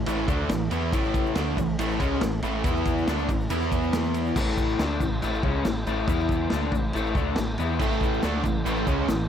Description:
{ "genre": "classic rock", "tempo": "140 BPM", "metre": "4/4", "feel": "straight", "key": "A major", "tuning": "A4 = 438 Hz", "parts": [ { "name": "crunchy overdriven guitar", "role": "riff", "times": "0.0-4.4, 7.8-9.3 s", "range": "A2 to E4", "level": "-30 LUFS", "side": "right 10 dB", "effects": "none" }, { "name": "overdriven electric guitar", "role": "riff", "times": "0.0-9.3 s", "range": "A2 to E4", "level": "-30 LUFS", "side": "equal", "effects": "spring reverb" }, { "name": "overdriven semi-hollow guitar", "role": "riff", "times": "0.0-9.3 s", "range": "A2 to E4", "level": "-30 LUFS", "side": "left 9 dB", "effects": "none" }, { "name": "gritty driven synth bass", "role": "bass", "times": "0.0-9.3 s", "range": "A1 to E2", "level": "-30 LUFS", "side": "equal", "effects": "none" }, { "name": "vintage drum kit", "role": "drums", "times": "0.1-9.2 s", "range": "crash cymbal, kick drum, ride cymbal, snare drum", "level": "-28 LUFS", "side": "equal", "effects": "none" }, { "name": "egg shaker", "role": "percussion", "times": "0.1-9.2 s", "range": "none", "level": "-50 LUFS", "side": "right 10 dB", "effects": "none" } ], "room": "light reverb, studio ambience", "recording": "none", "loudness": "-23 LUFS", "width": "side -9 dB against mid", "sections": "0.0-4.4 A section; 4.4-9.3 A section", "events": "none", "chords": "0.0 A; 2.6 E5; 3.1 A5; 3.5 E5; 4.4 A; 6.1 E5; 6.5 A" }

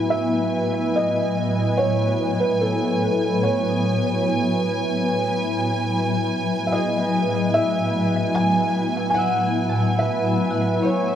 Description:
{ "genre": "ambient", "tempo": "73 BPM", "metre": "4/4", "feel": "straight", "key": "A lydian", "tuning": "A4 = 435 Hz", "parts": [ { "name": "shimmering ambient pad", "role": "sustained chords", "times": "0.0-11.2 s", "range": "A2 to B4", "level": "-21 LUFS", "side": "equal", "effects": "chorus, built-in reverb, phaser" }, { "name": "bright studio violin section", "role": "texture", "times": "0.0-11.2 s", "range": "G#5", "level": "-28 LUFS", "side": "right 1 dB", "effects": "none" }, { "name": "felt-muted upright piano", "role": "melody", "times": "0.1-11.2 s", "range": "A4 to G#5", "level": "-24 LUFS", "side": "right 1 dB", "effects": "analog chorus, analog delay" }, { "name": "Celtic harp", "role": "arpeggios", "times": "0.1-11.2 s", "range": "G#4 to A5", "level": "-34 LUFS", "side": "equal", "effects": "analog delay" } ], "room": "wet huge ambient reverb, RT60 7.7 s", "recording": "dreamy mix soaked in reverb, cassette tape", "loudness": "-19 LUFS", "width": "side -9 dB against mid", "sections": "0.1-11.2 A section", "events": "fade-in on harp 0.1-11.2", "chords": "0.1 Amaj7" }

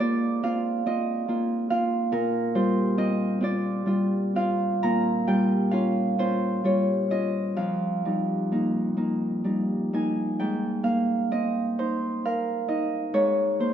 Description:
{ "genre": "classical, solo harp piece", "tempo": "44 BPM (dotted quarters)", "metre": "6/8", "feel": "uneven beats, rubato", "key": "F dorian, Ab major from 10.4 s", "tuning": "A4 = 440 Hz", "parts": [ { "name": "Celtic harp", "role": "solo", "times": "0.0-13.7 s", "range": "F2 to C6", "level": "-23 LUFS", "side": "equal", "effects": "none" } ], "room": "moderate recital hall reverb, RT60 1.7 s", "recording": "minimal, uncompressed stereo recording", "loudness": "-23 LUFS", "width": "side -9 dB against mid", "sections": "0.0-10.4 A section; 10.4-13.7 B section", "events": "none", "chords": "0.0 Ab69; 2.1 Bb69; 4.8 Bbm6; 7.6 F9sus4; 10.4 Abmaj9; 13.2 Bbm11/Ab" }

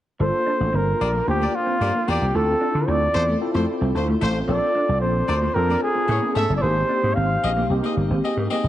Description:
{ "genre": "pop", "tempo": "112 BPM", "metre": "4/4", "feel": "straight", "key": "G dorian", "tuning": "A4 = 440 Hz", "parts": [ { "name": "breathy flugelhorn", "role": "melody", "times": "0.2-7.7 s", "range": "F4 to F5", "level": "-23 LUFS", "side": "equal", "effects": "none" }, { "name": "mellow tine electric piano", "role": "accompaniment", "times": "0.2-8.7 s", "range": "Bb3 to C5", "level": "-26 LUFS", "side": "left 2 dB", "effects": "fast stereo tremolo, ensemble chorus" }, { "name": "mellow electric guitar", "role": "riff", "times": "0.2-8.6 s", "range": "A3 to D4", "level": "-30 LUFS", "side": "right 1 dB", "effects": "lush chorus" }, { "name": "vintage slap bass", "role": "bass", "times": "0.2-8.7 s", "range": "F1 to D3", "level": "-23 LUFS", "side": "equal", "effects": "none" }, { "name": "warm horn section", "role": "second line", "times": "1.0-8.7 s", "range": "A3 to E5", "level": "-30 LUFS", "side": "left 1 dB", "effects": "none" } ], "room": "light reverb, studio ambience", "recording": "none", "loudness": "-19 LUFS", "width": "side -13 dB against mid", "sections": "0.2-8.7 A section", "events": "none", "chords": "0.2 Gm7; 2.3 Dm7; 4.5 Bbmaj7; 6.1 Amaj7; 6.6 Abmaj7" }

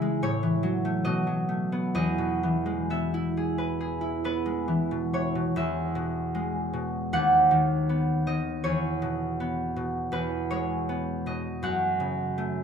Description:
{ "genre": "classical, solo harp piece", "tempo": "64-81 BPM", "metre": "4/4", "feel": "rubato", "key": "E major", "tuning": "A4 = 440 Hz", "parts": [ { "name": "concert harp", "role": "solo", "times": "0.0-12.6 s", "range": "D#2 to G#5", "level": "-25 LUFS", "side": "equal", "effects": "none" } ], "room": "moderate stone room reverb, RT60 1.1 s", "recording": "none", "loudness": "-25 LUFS", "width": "side -7 dB against mid", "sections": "0.0-5.6 A section; 5.6-12.6 B section", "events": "none", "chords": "0.2 F#m7/A; 1.1 B7; 2.0 E; 7.1 B/D#; 8.7 E; 11.6 F#m" }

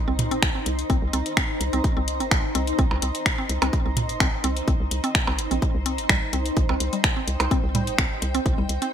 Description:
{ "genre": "minimal techno", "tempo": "127 BPM", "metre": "4/4", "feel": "straight", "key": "C minor", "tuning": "A4 = 440 Hz", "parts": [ { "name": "granular cloud pad", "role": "texture", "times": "0.0-8.9 s", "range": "Eb4 to Bb5", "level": "-30 LUFS", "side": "equal", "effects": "built-in reverb, analog chorus, sidechain pumping" }, { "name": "mallet-like synth pluck", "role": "riff", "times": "0.1-8.9 s", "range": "G3 to C4", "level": "-30 LUFS", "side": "equal", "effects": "chorus, sidechain pumping, digital delay" }, { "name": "hollow knocking FM bass", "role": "bass", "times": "0.1-8.8 s", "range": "G1 to C2", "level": "-27 LUFS", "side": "equal", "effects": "sidechain pumping" }, { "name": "house drum kit", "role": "drums", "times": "0.2-8.9 s", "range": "finger snaps, hi-hat", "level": "-24 LUFS", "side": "left 1 dB", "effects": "gated reverb" }, { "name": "electronic toms and percussion blips", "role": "percussion", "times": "0.2-7.8 s", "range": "none", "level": "-28 LUFS", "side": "right 3 dB", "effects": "ping-pong delay" }, { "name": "electronic kick drum", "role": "drums", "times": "0.4-8.6 s", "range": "none", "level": "-23 LUFS", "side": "equal", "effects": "none" } ], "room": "digital ambience", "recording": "bright 1980s-style digital production", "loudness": "-21 LUFS", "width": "side -9 dB against mid", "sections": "0.0-8.9 A section", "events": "none", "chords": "0.0 Cm7" }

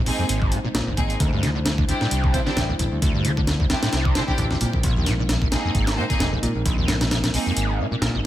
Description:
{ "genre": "breakbeat, breaks", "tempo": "132 BPM", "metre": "4/4", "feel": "swing 55% on 16ths", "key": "unclear", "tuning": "A4 = 440 Hz", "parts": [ { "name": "dark analog pad", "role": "sustained chords", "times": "0.0-8.3 s", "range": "G3 to C5", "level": "-32 LUFS", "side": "left 1 dB", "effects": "chorus, sidechain pumping" }, { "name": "screaming distorted acid line", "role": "riff", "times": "0.1-8.2 s", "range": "Ab1 to D3", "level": "-24 LUFS", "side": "equal", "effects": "distortion, ensemble chorus, digital delay" }, { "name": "rich studio string section", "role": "stabs", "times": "0.1-7.5 s", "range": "Bb3 to C5", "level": "-29 LUFS", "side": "right 2 dB", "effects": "digital delay" }, { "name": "breakbeat sampler-style drum kit", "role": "drums", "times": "0.1-8.1 s", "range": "hi-hat, kick drum, snare drum", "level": "-23 LUFS", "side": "equal", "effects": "studio reverb" }, { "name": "picked electric bass", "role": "bass", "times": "0.6-8.3 s", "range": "F1 to Bb2", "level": "-25 LUFS", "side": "equal", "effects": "none" } ], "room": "little or no reverb", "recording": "none", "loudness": "-19 LUFS", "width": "side -13 dB against mid", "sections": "0.0-8.3 A section", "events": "kick drops out 7.6-8.3", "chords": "0.0 Bb9sus4; 1.2 D9sus4; 4.6 Bb9sus4" }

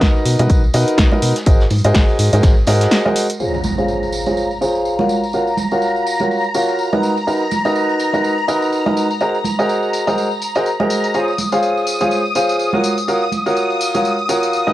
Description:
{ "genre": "piano house", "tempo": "124 BPM", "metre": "4/4", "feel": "swing 57% on 16ths", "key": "Db major", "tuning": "A4 = 441 Hz", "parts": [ { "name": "clear upright piano", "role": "riff", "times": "0.0-14.7 s", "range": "Eb4 to F5", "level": "-17 LUFS", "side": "equal", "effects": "sidechain pumping, low-pass filter, cassette tape" }, { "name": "organ-like FM bass", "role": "bass", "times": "0.0-2.9 s", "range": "Ab1 to Cb3", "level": "-16 LUFS", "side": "equal", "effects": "sidechain pumping" }, { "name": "electronic kick drum", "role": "drums", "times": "0.0-2.5 s", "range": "none", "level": "-13 LUFS", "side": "equal", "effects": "cassette tape" }, { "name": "punchy analog drum machine", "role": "drums", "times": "0.0-14.6 s", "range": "hi-hat, snare drum, tambourine", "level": "-22 LUFS", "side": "left 1 dB", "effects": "overdrive, low-pass filter on hats, cassette tape, low-pass filter on snare, low-pass filter on perc" }, { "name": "vintage brush drum kit", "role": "drums", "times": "0.0-3.3 s", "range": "hi-hat, snare drum, tambourine", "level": "-32 LUFS", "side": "equal", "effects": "none" }, { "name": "tambourine and congas", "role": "percussion", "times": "0.0-14.7 s", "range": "none", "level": "-25 LUFS", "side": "right 3 dB", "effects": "none" }, { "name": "string machine, violins", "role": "sustained chords", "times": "3.4-14.7 s", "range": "Bb5 to Eb6", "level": "-22 LUFS", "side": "equal", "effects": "ensemble chorus, sidechain pumping, cassette tape" }, { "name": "impact", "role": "sound effects", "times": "3.4-5.3 s", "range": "none", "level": "-27 LUFS", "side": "equal", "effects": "none" } ], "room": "light reverb", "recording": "home recording on cassette", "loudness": "-14 LUFS", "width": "side -14 dB against mid", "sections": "0.0-3.4 A section; 3.4-14.7 B section", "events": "break 2.9-3.4; impact 3.4-5.3; filter sweep on upright piano 3.4-14.7", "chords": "0.0 Cbmaj7; 1.5 Ab9; 3.4 Dbmaj7; 5.1 Gbmaj7; 7.0 Cbmaj7; 9.2 Ab9; 11.1 Dbmaj7; 12.8 Gbmaj7" }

